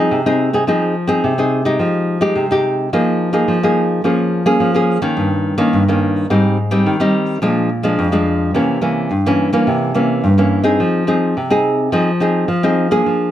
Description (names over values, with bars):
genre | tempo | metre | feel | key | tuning
samba | 107 BPM | 4/4 | straight | F minor | A4 = 442 Hz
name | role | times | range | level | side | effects
nylon-string guitar | solo | 0.0-13.3 s | F2 to Ab4 | -13 LUFS | equal | none
room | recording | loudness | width
moderate large studio reverb, RT60 0.8 s | none | -13 LUFS | side -12 dB against mid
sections
0.0-1.8 A section; 1.8-13.3 A section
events
none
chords
0.0 Fm9; 2.9 Bb7sus4/F; 4.0 Bbm7/F; 5.2 Eb7/G; 6.3 Abmaj7; 7.4 Bb7; 8.5 C7b9; 10.8 Fm7